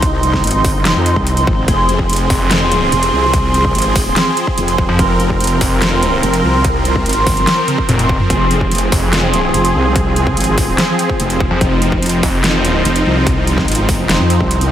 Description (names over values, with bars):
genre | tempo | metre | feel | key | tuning
heavy wobble dubstep | 145 BPM | 4/4 | half-time | F minor | A4 = 440 Hz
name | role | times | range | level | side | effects
supersaw chords | sustained chords | 0.0-14.7 s | F3 to Bb4 | -17 LUFS | equal | sidechain pumping
wobble bass | bass | 0.0-14.7 s | F1 to F2 | -16 LUFS | equal | chorus, overdrive
big-room dance drum kit | drums | 0.0-14.7 s | hi-hat, snare drum, toms | -18 LUFS | equal | overdrive, studio reverb
electronic kick drum | drums | 0.0-14.5 s | none | -18 LUFS | equal | overdrive, studio reverb
warbly tape-like pad | texture | 0.0-14.7 s | C6 | -20 LUFS | right 2 dB | chorus, built-in reverb, sidechain pumping
snarling distorted saw bass | bass | 2.3-12.8 s | F1 to F2 | -16 LUFS | equal | distortion, overdrive
room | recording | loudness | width
light reverb, digital ambience | none | -11 LUFS | side -11 dB against mid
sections
0.0-14.7 A section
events
drum fill 7.7-8.3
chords
0.0 Fm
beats
| 0.03 0.44 0.85 1.27 | 1.68 2.09 2.51 2.92 | 3.33 3.75 4.16 4.58 | 4.99 5.40 5.82 6.23 | 6.65 7.06 7.47 7.89 | 8.30 8.71 9.13 9.54 | 9.96 10.37 10.78 11.20 | 11.61 12.03 12.44 12.85 | 13.27 13.68 14.09 14.51